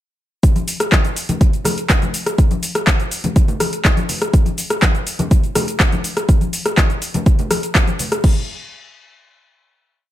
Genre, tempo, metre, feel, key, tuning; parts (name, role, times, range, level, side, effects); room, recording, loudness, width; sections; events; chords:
house; 123 BPM; 4/4; straight
deep house drum kit; drums; 0.4-8.3 s; crash cymbal, handclaps, hi-hat, rim click, shaker; -19 LUFS; left 1 dB; overdrive, sidechain pumping on hats, sidechain pumping on perc, sidechain pumping on cymbals
electronic kick drum; drums; 0.4-8.3 s; -14 LUFS; equal; overdrive
congas; percussion; 0.6-8.1 s; -25 LUFS; left 2 dB; sidechain pumping on perc
little or no reverb; -14 LUFS; side -13 dB against mid
0.4-8.2 drop; 8.2-10.1 final hit
drop 0.4-8.2